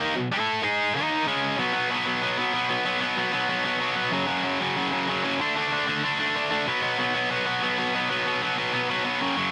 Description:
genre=punk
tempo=188 BPM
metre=4/4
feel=straight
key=unclear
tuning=A4 = 439 Hz
part: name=tight distorted guitar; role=solo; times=0.0-9.5 s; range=F#2 to A4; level=-25 LUFS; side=equal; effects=distortion
room=light reverb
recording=none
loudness=-25 LUFS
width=mono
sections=0.0-1.6 A section; 1.6-9.5 B section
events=none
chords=0.3 A5; 0.6 G#5; 0.9 D#5; 1.3 C#5; 1.6 B5; 4.1 F#5; 5.4 D5; 6.7 B5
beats=| 0.31 0.63 0.94 1.26 | 1.58 1.90 2.21 2.53 | 2.85 3.17 3.48 3.80 | 4.12 4.44 4.76 5.08 | 5.39 5.71 6.03 6.35 | 6.67 6.99 7.31 7.62 | 7.94 8.26 8.58 8.90 | 9.22

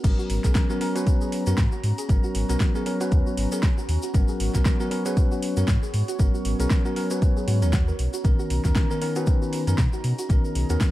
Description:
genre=deep house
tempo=117 BPM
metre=4/4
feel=swing 57% on 16ths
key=G# minor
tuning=A4 = 444 Hz
part: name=warbly tape-like pad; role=sustained chords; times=0.0-10.9 s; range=B3 to A#5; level=-35 LUFS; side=right 1 dB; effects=chorus, built-in reverb, sidechain pumping
part: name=bell-like tine electric piano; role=stabs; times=0.0-10.9 s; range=D#3 to B4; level=-28 LUFS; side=left 1 dB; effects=sidechain pumping, dub echo
part: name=sub bass with octave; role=bass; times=0.0-10.8 s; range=G#1 to B2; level=-24 LUFS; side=equal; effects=none
part: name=deep house drum kit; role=drums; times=0.0-10.9 s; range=crash cymbal, hi-hat, snare drum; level=-32 LUFS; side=equal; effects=none
part: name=electronic kick drum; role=drums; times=0.0-10.9 s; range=none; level=-21 LUFS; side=equal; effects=none
part: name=tube shaker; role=percussion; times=0.0-10.9 s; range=none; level=-40 LUFS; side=left 3 dB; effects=none
part: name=soft round pluck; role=arpeggios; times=0.2-10.7 s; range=F#4 to F#5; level=-36 LUFS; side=right 3 dB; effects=wide subtle chorus, vintage 12-bit sampler grit, sidechain pumping, digital delay
room=digital ambience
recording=dark, warm production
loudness=-21 LUFS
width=side -16 dB against mid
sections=0.0-10.9 A section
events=drop 0.0-10.9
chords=0.0 G#m11; 8.0 Bmaj9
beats=| 0.04 0.55 1.07 1.58 | 2.09 2.60 3.12 3.63 | 4.14 4.66 5.17 5.68 | 6.20 6.71 7.22 7.73 | 8.25 8.76 9.27 9.78 | 10.30 10.81

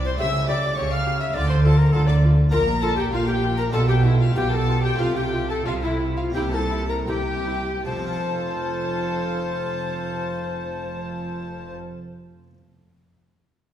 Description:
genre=classical, baroque-style concerto movement with solo episodes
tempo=77-104 BPM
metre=4/4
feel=straight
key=F major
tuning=A4 = 439 Hz
part: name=breathy tenor recorder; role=melody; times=0.0-11.7 s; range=E4 to F5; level=-28 LUFS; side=left 2 dB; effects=none
part: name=warm chamber violin section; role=melody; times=0.0-11.7 s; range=E5 to F6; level=-30 LUFS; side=left 3 dB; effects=none
part: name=warm chamber violin section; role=second line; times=0.0-11.7 s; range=E4 to F5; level=-30 LUFS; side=left 3 dB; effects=none
part: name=harpsichord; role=accompaniment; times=0.0-12.6 s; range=Bb2 to C5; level=-35 LUFS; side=left 2 dB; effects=none
part: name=warm chamber cello section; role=bass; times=0.0-11.7 s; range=F2 to D3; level=-25 LUFS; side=right 1 dB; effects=none
part: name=warm studio double bass section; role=bass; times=0.0-11.7 s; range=F1 to D2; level=-26 LUFS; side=right 2 dB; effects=none
part: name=dark chamber viola section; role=accompaniment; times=0.2-11.7 s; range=E4 to G4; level=-34 LUFS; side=right 1 dB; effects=none
room=wet recital hall reverb, RT60 1.7 s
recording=heard from further back in the room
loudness=-20 LUFS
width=side -10 dB against mid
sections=0.0-7.8 A section; 7.8-11.0 B section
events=slowing down 1.3-7.8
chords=0.2 A7/C#; 1.3 Dm; 2.5 Bb6; 3.7 G13/B; 5.0 F/C; 6.3 C7; 7.8 F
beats=| 0.19 0.77 1.35 1.93 | 2.52 3.12 3.72 4.35 | 4.99 5.66 6.34 7.08 | 7.85 8.63 9.41 10.19

